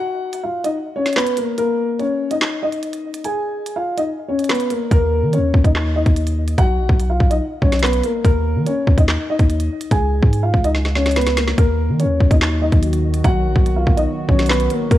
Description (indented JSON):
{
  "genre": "hip hop, drill",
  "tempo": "144 BPM",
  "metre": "4/4",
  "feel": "half-time",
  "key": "Eb minor",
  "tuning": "A4 = 441 Hz",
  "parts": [
    { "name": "dark concert grand piano", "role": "melody", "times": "0.0-15.0 s", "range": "Bb3 to Ab5", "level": "-20 LUFS", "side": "left 1 dB", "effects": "tape echo" },
    { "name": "drill drum kit", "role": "drums", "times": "0.3-15.0 s", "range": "handclaps, hi-hat, kick drum, snare drum", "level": "-17 LUFS", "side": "equal", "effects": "none" },
    { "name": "long sustained 808-style bass", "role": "bass", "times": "4.9-15.0 s", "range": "Bb1 to Eb3", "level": "-18 LUFS", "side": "equal", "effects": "none" },
    { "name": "dark analog pad", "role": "sustained chords", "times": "12.4-15.0 s", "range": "Eb3 to Gb4", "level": "-25 LUFS", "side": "right 2 dB", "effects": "chorus, phaser" }
  ],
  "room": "little or no reverb",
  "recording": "worn, warbling old tape, cassette tape, warbly pitch drift",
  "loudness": "-15 LUFS",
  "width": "side -13 dB against mid",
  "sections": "0.0-15.0 A section",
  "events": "break 0.0-4.9; drum fill 10.7-11.6",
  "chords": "0.0 B5; 1.6 Eb5; 3.2 Db; 4.9 Eb5; 6.6 B5; 8.2 Eb5; 9.9 Db; 11.6 Ebm; 13.2 B"
}